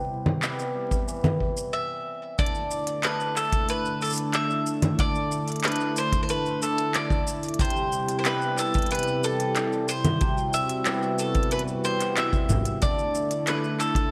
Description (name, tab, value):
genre	folktronica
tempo	92 BPM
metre	4/4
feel	straight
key	unclear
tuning	A4 = 440 Hz
part	warm analog pad	sustained chords	0.0-14.1 s	C3 to B4	-33 LUFS	equal	subtle chorus
part	cimbalom	arpeggios	0.0-14.1 s	C3 to E4	-33 LUFS	equal	digital delay
part	organic electronic drum kit	drums	0.3-14.1 s	congas, handclaps, hi-hat, shaker	-30 LUFS	equal	none
part	kick drum	drums	0.9-14.1 s	none	-29 LUFS	equal	none
part	bowl-back mandolin	melody	1.7-14.1 s	A4 to E5	-31 LUFS	equal	digital delay
room	light reverb, small room ambience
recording	vinyl crackle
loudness	-26 LUFS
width	mono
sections	0.0-2.4 A section; 2.4-14.1 B section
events	stop 1.7-2.4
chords	0.0 Cmaj7; 2.4 Dsus2; 7.6 Cmaj7; 12.8 Dsus2